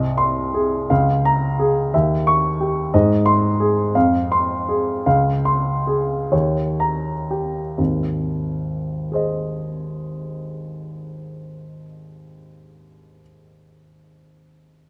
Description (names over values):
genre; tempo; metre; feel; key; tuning
classical, romantic character piece for solo piano; 38-60 BPM; 2/4; rubato; Ab major; A4 = 440 Hz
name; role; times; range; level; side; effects
dark baby grand piano; solo; 0.0-14.9 s; Ab1 to Db6; -20 LUFS; equal; none
room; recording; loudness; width
light reverb; close, detailed microphones; -20 LUFS; mono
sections
0.0-7.8 A section; 7.8-13.1 B section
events
slowing down 1.9-7.8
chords
0.0 Ab/C; 0.9 Bbm7/Db; 1.9 Eb7b9; 2.9 Ab; 3.9 Fm; 5.1 Dbmaj7; 6.3 Eb7; 7.8 Ab